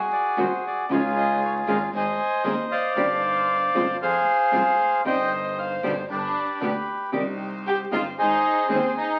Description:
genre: tango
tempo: 115 BPM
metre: 4/4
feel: rubato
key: C harmonic minor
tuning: A4 = 440 Hz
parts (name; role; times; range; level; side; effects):
- bandoneon; melody; 0.0-9.2 s; F4 to Ab5; -25 LUFS; equal; none
- rich chamber string section; stabs; 0.0-8.9 s; Ab3 to C5; -39 LUFS; equal; none
- clear double bass; bass; 0.0-8.9 s; F1 to F2; -36 LUFS; equal; none
- nylon-string guitar; accompaniment; 0.4-8.8 s; B2 to Ab4; -29 LUFS; equal; none
- warm studio violin section; second line; 6.1-9.2 s; C4 to G4; -29 LUFS; equal; none
room: wet studio reverb, RT60 0.8 s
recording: very old 78 rpm record, vinyl crackle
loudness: -23 LUFS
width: mono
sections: 0.0-9.2 A section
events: none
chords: 0.0 Ab7; 0.9 Dbadd9; 1.9 Ab; 3.0 Cmadd9/G; 4.0 Fm; 5.0 Cm/G; 6.1 G; 7.1 Cm; 8.2 Ab

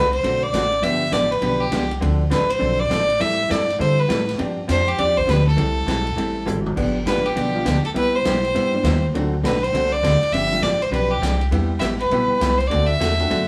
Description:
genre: country, western swing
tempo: 202 BPM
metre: 4/4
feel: swing 63% on 8ths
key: unclear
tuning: A4 = 441 Hz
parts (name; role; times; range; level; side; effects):
- clear fiddle; melody; 0.0-13.5 s; G4 to E5; -23 LUFS; equal; none
- vintage hollow-body jazz guitar; accompaniment; 0.0-13.5 s; C3 to A4; -26 LUFS; equal; none
- upright bass; bass; 0.0-13.5 s; G1 to D3; -25 LUFS; equal; none
- swinging big-band drum kit; drums; 0.1-13.4 s; crash cymbal, hi-hat, kick drum, ride cymbal, snare drum, toms; -33 LUFS; equal; none
- honky-tonk upright piano; accompaniment; 7.1-13.3 s; E3 to A4; -32 LUFS; equal; none
room: wet studio reverb, RT60 0.6 s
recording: band playing live in one room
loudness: -20 LUFS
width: mono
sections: 0.0-13.5 A section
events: drum fill 6.5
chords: 0.0 D7; 0.8 G7; 2.0 Dm7; 3.2 Am11; 4.4 G7sus4; 5.6 Am7; 6.8 G7; 8.0 Cmaj7; 9.1 D7; 10.3 G9sus4; 11.5 Cmaj7; 12.7 D7

